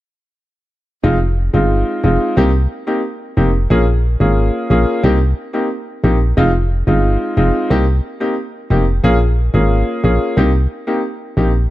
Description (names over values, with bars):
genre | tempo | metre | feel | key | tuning
dancehall | 90 BPM | 4/4 | straight | C phrygian | A4 = 441 Hz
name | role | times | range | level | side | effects
clear baby grand piano | accompaniment | 1.0-11.5 s | Ab3 to Ab4 | -17 LUFS | equal | none
solid FM bass | bass | 1.0-11.7 s | F1 to C2 | -14 LUFS | equal | none
room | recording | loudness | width
small room ambience | none | -13 LUFS | side -16 dB against mid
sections
1.0-11.7 A section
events
none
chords
1.0 Fm7; 2.4 Cm7; 3.7 Bbm7; 5.0 Cm7; 6.4 Fm7; 7.7 Cm7; 9.0 Bbm7; 10.4 Cm7